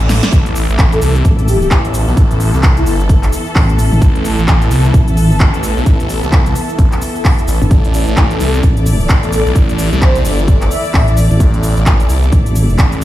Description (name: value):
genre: bass house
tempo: 130 BPM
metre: 4/4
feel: swing 60% on 16ths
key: unclear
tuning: A4 = 439 Hz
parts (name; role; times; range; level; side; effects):
- rich symphonic string section; sustained chords; 0.0-13.0 s; E3 to D5; -24 LUFS; left 2 dB; sidechain pumping
- phased detuned saw bass; bass; 0.0-13.0 s; G1 to C2; -14 LUFS; equal; phaser, tube saturation, sidechain pumping
- big-room dance drum kit; drums; 0.0-13.0 s; cabasa, handclaps, hi-hat, snare drum; -20 LUFS; equal; overdrive
- granular cloud pad; texture; 0.0-13.0 s; E4 to D6; -24 LUFS; equal; built-in reverb, sidechain pumping
- electronic kick drum; drums; 0.3-12.9 s; none; -11 LUFS; equal; none
- breathy flute-like synth lead; melody; 0.9-3.0, 8.3-11.2 s; E4 to E5; -21 LUFS; left 1 dB; ensemble chorus, dub echo
- pulsing pluck wobble bass; bass; 1.2-12.8 s; G1 to A1; -12 LUFS; equal; chorus, overdrive, sidechain pumping
room: little or no reverb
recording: played on a big sound system in a bare room, stone room reverb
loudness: -9 LUFS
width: side -14 dB against mid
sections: 0.0-13.0 A section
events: drum fill 0.1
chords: 0.0 A5